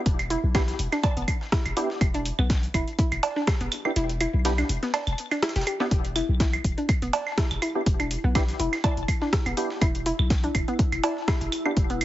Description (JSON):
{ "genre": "minimal techno", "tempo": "123 BPM", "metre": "4/4", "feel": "swing 55% on 16ths", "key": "E minor", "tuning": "A4 = 438 Hz", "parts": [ { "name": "punchy sub bass", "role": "bass", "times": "0.1-12.0 s", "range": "E1 to B1", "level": "-28 LUFS", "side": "equal", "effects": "sidechain pumping" }, { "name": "booming analog drum machine", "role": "drums", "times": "0.1-12.0 s", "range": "hi-hat, rim click", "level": "-33 LUFS", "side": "equal", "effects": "none" }, { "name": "dusty soul sampler-style drum kit", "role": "drums", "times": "0.1-12.0 s", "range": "hi-hat, snare drum", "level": "-39 LUFS", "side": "equal", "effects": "overdrive, sidechain pumping on hats, high-pass filter on hats, high-pass filter on snare" }, { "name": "electronic kick drum", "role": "drums", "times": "0.1-11.9 s", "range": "none", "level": "-24 LUFS", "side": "equal", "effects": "overdrive" }, { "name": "claves and cowbell", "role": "percussion", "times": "0.2-12.0 s", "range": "none", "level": "-29 LUFS", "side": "right 4 dB", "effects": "ping-pong delay" }, { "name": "hollow square pluck", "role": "riff", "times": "0.3-11.9 s", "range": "B3 to G4", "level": "-30 LUFS", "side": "left 1 dB", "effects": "chorus, cassette tape, sidechain pumping, ping-pong delay" }, { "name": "percussive organ stab", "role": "stabs", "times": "0.5-11.7 s", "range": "B3 to G4", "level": "-31 LUFS", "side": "right 1 dB", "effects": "ensemble chorus, ping-pong delay" }, { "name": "swarming drone", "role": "texture", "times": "7.6-12.0 s", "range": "E4", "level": "-36 LUFS", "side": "equal", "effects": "built-in reverb, sidechain pumping" } ], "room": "light reverb", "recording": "heavily compressed radio sound, multiband compression, nothing above 7.7 kHz", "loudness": "-22 LUFS", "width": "side -14 dB against mid", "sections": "0.0-12.0 A section", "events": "kick drops out 4.0-5.9", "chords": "0.0 Em7" }